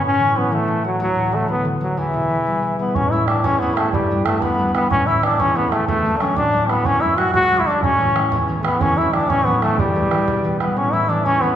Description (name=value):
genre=celtic folk, Celtic jig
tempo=123 BPM (dotted quarters)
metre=6/8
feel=straight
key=unclear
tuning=A4 = 440 Hz
part: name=brilliant trombone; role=melody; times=0.0-11.6 s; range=E3 to F#4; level=-19 LUFS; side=equal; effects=none
part: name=wooden flute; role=second line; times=0.0-11.6 s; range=E5 to F#6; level=-24 LUFS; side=left 2 dB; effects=none
part: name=concert harp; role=accompaniment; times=0.0-11.6 s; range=C#2 to E4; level=-22 LUFS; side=equal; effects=none
part: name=bodhran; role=percussion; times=3.0-10.7 s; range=none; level=-24 LUFS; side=right 3 dB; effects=none
room=wet recital hall reverb, RT60 1.6 s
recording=recorded in a church or concert hall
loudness=-16 LUFS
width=side -10 dB against mid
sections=0.0-3.0 A section; 3.0-10.8 B section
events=none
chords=0.0 A6; 1.0 D; 2.0 Em; 3.0 A; 3.9 G; 4.9 A; 5.9 D; 6.9 F#m; 7.8 A; 8.8 Dadd9; 9.8 Em; 10.8 A